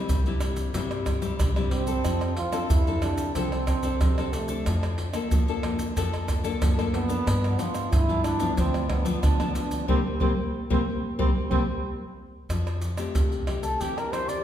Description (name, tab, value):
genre	samba and choro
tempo	92 BPM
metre	4/4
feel	straight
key	F major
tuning	A4 = 440 Hz
part	nylon-string guitar	accompaniment	0.0-14.4 s	G2 to A4	-29 LUFS	left 4 dB	none
part	upright bass	bass	0.1-14.4 s	C2 to F3	-30 LUFS	equal	none
part	tube shaker, surdo, pandeiro and tamborim	percussion	0.1-14.4 s	none	-27 LUFS	right 1 dB	none
part	breathy trombone	second line	1.7-11.6 s	A3 to F4	-30 LUFS	right 4 dB	none
part	trumpet with bucket mute	melody	13.6-14.4 s	G4 to D5	-28 LUFS	left 1 dB	none
room	wet recital hall reverb, RT60 1.8 s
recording	recorded in a church or concert hall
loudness	-23 LUFS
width	side -10 dB against mid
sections	0.0-12.5 A section; 12.5-14.4 B section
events	trombone solo 0.0-12.5; band accent 9.9-12.5; muted trumpet solo 12.5-14.4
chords	0.0 C; 2.0 F6; 4.7 Bbmaj7/F; 7.3 G7; 9.9 C5; 12.5 Fadd9; 13.8 C/E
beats	0.09 0.74 1.40 | 2.05 2.70 3.35 4.01 | 4.66 5.31 5.96 6.62 | 7.27 7.92 8.58 9.23 | 9.88 10.54 11.19 11.84 | 12.50 13.15 13.80